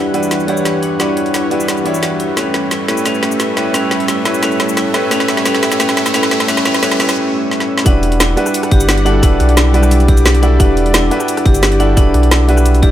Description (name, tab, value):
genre	liquid drum and bass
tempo	175 BPM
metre	4/4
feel	straight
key	E dorian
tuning	A4 = 440 Hz
part	bright baby grand piano	accompaniment	0.0-12.9 s	G3 to F#5	-18 LUFS	right 1 dB	digital delay
part	lush unison pad	sustained chords	0.0-12.9 s	E3 to F#5	-21 LUFS	equal	chorus, sidechain pumping
part	vibraphone with hard mallets	arpeggios	0.0-12.9 s	C#4 to E5	-18 LUFS	left 1 dB	tape echo
part	riser	sound effects	0.8-7.2 s	none	-27 LUFS	right 1 dB	none
part	drum and bass drum kit	drums	0.1-12.9 s	cabasa, hi-hat, rim click, snare drum	-17 LUFS	equal	overdrive, high-pass filter on hats, studio reverb, high-pass filter on snare, high-pass filter on perc
part	warm sub bass	bass	7.9-12.9 s	D1 to B1	-12 LUFS	equal	none
part	electronic kick drum	drums	7.9-12.9 s	none	-11 LUFS	equal	studio reverb
room	light reverb, digital ambience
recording	none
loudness	-11 LUFS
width	side -12 dB against mid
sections	0.0-7.9 A section; 7.9-12.9 B section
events	build-up 0.0-7.9; drum fill 0.0-7.2, 7.5-7.9; filter sweep on vibraphone 0.0-7.9; riser 0.8-7.2; break 7.2-7.9; drop 7.9-12.9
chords	0.0 Em9; 2.4 A9; 7.9 Em9